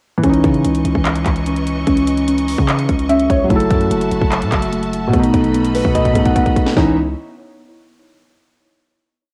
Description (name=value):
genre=hip hop, trap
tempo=147 BPM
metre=4/4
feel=half-time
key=C# minor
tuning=A4 = 439 Hz
part: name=felt-muted upright piano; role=accompaniment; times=0.2-7.0 s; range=B2 to F#5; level=-20 LUFS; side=equal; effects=low-pass filter, cassette tape
part: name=bright symphonic string section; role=sustained chords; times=0.2-7.0 s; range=E3 to C#6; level=-30 LUFS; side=equal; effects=cassette tape
part: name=muted felt-like synth keys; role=arpeggios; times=0.2-7.0 s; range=A3 to C#5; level=-22 LUFS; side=equal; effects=chorus, low-pass filter, cassette tape, analog delay
part: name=distorted 808-style bass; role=bass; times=0.2-7.1 s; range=F#1 to C#3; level=-24 LUFS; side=equal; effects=distortion
part: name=trap drum kit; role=drums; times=0.2-6.9 s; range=handclaps, hi-hat, kick drum, snare drum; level=-21 LUFS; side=equal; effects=cassette tape
room=light reverb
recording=home recording on cassette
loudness=-16 LUFS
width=mono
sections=0.2-6.8 hook; 6.8-8.4 final chord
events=felt piano fill 2.9-3.5, 5.5-6.8; drum fill 6.0-6.8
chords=0.2 C#madd9; 3.5 F#m7; 5.1 B7; 6.8 C#madd9